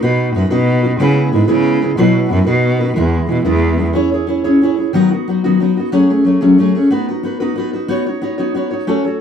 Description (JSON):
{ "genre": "celtic folk, Celtic jig", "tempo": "122 BPM (dotted quarters)", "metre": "6/8", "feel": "straight", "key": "E major", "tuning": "A4 = 441 Hz", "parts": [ { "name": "fingerpicked steel-string acoustic guitar", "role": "accompaniment", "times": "0.0-9.2 s", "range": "B2 to C#5", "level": "-13 LUFS", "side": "equal", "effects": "none" }, { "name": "rich cello", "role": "bass", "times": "0.0-3.9 s", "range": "E2 to C#3", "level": "-15 LUFS", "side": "equal", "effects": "none" } ], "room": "wet studio reverb, RT60 0.6 s", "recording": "dark, warm production", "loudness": "-12 LUFS", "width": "side -7 dB against mid", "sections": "0.0-4.0 A section; 4.0-9.2 B section", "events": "none", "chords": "0.0 B; 1.0 C#m7; 2.0 Bsus4; 2.5 B; 3.0 E; 4.0 C#m; 4.9 B/D#; 5.9 F#madd9; 6.9 B; 7.9 Badd9" }